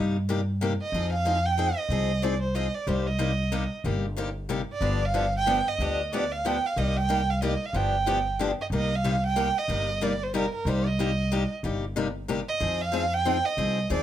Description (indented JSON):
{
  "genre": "acoustic string swing (jazz manouche)",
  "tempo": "185 BPM",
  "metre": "3/4",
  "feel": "swing 59% on 8ths",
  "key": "C minor",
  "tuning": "A4 = 440 Hz",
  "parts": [
    { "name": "picked steel-string acoustic guitar", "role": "accompaniment", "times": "0.0-14.0 s", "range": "C3 to Ab4", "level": "-30 LUFS", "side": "left 4 dB", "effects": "none" },
    { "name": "upright bass", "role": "bass", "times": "0.0-14.0 s", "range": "G1 to G2", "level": "-28 LUFS", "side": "equal", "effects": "none" },
    { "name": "warm violin", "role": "melody", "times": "0.8-14.0 s", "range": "Bb4 to G5", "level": "-28 LUFS", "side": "right 4 dB", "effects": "none" }
  ],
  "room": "light reverb",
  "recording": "none",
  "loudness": "-24 LUFS",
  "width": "side -11 dB against mid",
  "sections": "0.0-8.7 A section; 8.7-14.0 A section",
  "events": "none",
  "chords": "0.0 Cm7; 0.9 Fm7; 2.9 Cm7; 4.8 G7; 6.8 Cm7; 7.7 G7; 8.7 Cm7; 12.6 Fm7",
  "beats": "0.29 0.61 | 0.93 1.26 1.58 | 1.91 2.23 2.55 | 2.88 3.20 3.52 | 3.85 4.17 4.50 | 4.82 5.15 5.47 | 5.79 6.12 6.44 | 6.77 7.09 7.42 | 7.74 8.07 8.39 | 8.72 9.04 9.37 | 9.69 10.01 10.34 | 10.66 10.99 11.31 | 11.64 11.96 12.28 | 12.61 12.93 13.26 | 13.58 13.90"
}